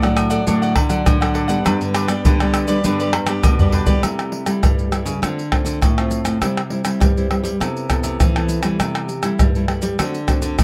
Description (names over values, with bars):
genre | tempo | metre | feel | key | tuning
samba and choro | 101 BPM | 4/4 | straight | C major | A4 = 444 Hz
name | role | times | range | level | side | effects
cavaquinho | accompaniment | 0.0-4.0 s | D4 to F#5 | -26 LUFS | equal | none
nylon-string guitar | accompaniment | 0.0-10.6 s | G2 to A4 | -25 LUFS | equal | none
nylon-string guitar | bass | 0.0-10.6 s | G2 to G3 | -26 LUFS | equal | none
maracas, pandeiro, tamborim, agogo bells and surdo | percussion | 0.0-10.6 s | none | -20 LUFS | equal | none
room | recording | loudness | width
light reverb | close, detailed microphones | -18 LUFS | mono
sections
0.0-4.0 A section; 4.0-10.6 B section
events
drum fill 3.3-4.0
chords
0.0 D; 1.7 G; 4.0 C6; 5.2 Dm7; 6.4 C; 7.6 Amadd9/C; 8.8 C6; 10.0 D7